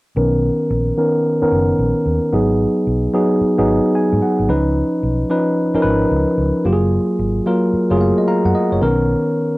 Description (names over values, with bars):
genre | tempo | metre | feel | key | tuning
R&B | 111 BPM | 4/4 | swing 64% on 16ths | unclear | A4 = 441 Hz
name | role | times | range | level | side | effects
tine electric piano | accompaniment | 0.2-9.6 s | D#3 to A#5 | -15 LUFS | equal | low-pass filter, cassette tape
vintage muted fingered electric bass | bass | 0.2-9.1 s | F#1 to G#2 | -20 LUFS | equal | none
room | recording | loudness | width
moderate small room reverb, RT60 0.5 s | home recording on cassette | -14 LUFS | side -20 dB against mid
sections
0.2-8.8 A section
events
filter sweep on tine electric piano 0.2-8.8; tine electric piano fill 3.7-4.5, 7.7-8.8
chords
0.2 Bmaj9; 2.3 G#m7; 4.5 C#9; 6.6 F#maj9; 8.8 Bmaj9